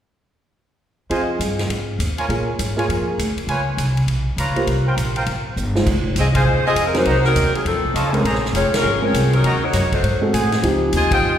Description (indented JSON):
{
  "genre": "jazz, big band swing",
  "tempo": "202 BPM",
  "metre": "4/4",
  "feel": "swing 63% on 8ths",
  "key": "F minor",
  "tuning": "A4 = 440 Hz",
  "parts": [
    { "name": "warm concert grand piano", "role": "accompaniment", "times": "1.1-11.4 s", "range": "F3 to Eb5", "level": "-23 LUFS", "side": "equal", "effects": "none" },
    { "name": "clear trumpet section", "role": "stabs", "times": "1.1-11.2 s", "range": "F4 to Bb5", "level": "-26 LUFS", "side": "right 1 dB", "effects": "none" },
    { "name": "upright bass", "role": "bass", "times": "1.1-11.4 s", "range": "F1 to Bb2", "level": "-20 LUFS", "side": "equal", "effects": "none" },
    { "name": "swinging big-band drum kit", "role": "drums", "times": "1.1-11.2 s", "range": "crash cymbal, hi-hat, kick drum, ride cymbal, snare drum", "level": "-26 LUFS", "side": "equal", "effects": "none" },
    { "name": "clear saxophone section", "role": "melody", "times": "6.2-11.4 s", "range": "F3 to Ab5", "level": "-19 LUFS", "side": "left 1 dB", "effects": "none" }
  ],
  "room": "wet concert hall reverb, RT60 1.9 s",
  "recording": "heard from further back in the room",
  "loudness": "-16 LUFS",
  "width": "side -10 dB against mid",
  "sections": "1.1-5.9 A section; 5.9-11.4 B section",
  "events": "drum fill 5.6; band accent 6.3, 8.7, 11.1",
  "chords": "1.1 Fm7; 2.3 Bbm7; 3.5 Db7; 4.7 C7sus4; 5.9 Fm7; 7.1 Cm7b5; 7.6 F7b13; 8.2 Bbm9; 9.4 Ebm7; 10.0 Ab7b9; 10.6 Dbmaj9#11"
}